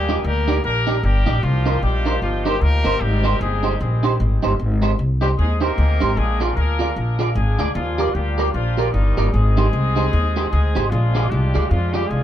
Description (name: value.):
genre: ska.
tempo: 152 BPM.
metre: 4/4.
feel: swing 60% on 8ths.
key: unclear.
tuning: A4 = 440 Hz.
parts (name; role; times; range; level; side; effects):
clear horn section; melody; 0.0-12.2 s; Eb3 to Bb4; -24 LUFS; left 2 dB; tape echo.
upright bass; bass; 0.0-12.2 s; G1 to F2; -19 LUFS; equal; none.
electric guitar at the edge of break-up; accompaniment; 0.1-12.0 s; Eb4 to D5; -24 LUFS; right 3 dB; ensemble chorus, tape echo.
room: light reverb.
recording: none.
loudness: -17 LUFS.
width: side -11 dB against mid.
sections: 0.0-12.2 A section.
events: none.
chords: 0.0 Ebmaj7; 1.4 Cm7; 3.0 Abmaj7; 6.2 Bb7; 7.7 Ebmaj7; 9.3 Abmaj7; 10.9 Bb7.